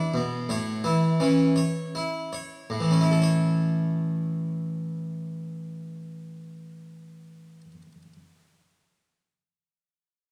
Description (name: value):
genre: classical, baroque-style suite movement for harpsichord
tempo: 54 BPM (dotted quarters)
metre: 6/8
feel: rubato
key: A major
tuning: A4 = 436 Hz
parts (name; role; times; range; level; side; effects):
- harpsichord; solo; 0.0-8.1 s; A2 to C#5; -27 LUFS; equal; none
room: wet recital hall reverb, RT60 1.7 s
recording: none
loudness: -26 LUFS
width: mono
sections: 0.0-2.7 A section; 2.7-7.1 B section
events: slowing down 0.0-2.7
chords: 0.5 A